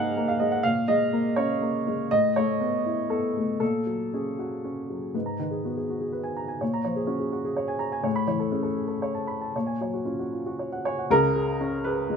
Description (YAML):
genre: neoclassical minimalist piano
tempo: 114-126 BPM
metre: 3/4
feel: rubato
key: G# dorian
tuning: A4 = 437 Hz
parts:
  - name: warm baby grand piano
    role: solo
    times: 0.0-12.2 s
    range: C#2 to B5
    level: -24 LUFS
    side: equal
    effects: none
room: moderate studio reverb, RT60 0.7 s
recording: minimal, uncompressed stereo recording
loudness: -24 LUFS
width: side -6 dB against mid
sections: 0.0-5.1 A section; 5.1-11.1 B section; 11.1-12.2 C section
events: none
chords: 0.0 G#sus2; 0.6 A#m7; 2.1 Aadd9; 3.6 F#add9/A#; 5.1 G#madd9; 6.6 A#m7; 8.1 Aadd9; 9.5 F#add9/A#; 11.1 C#5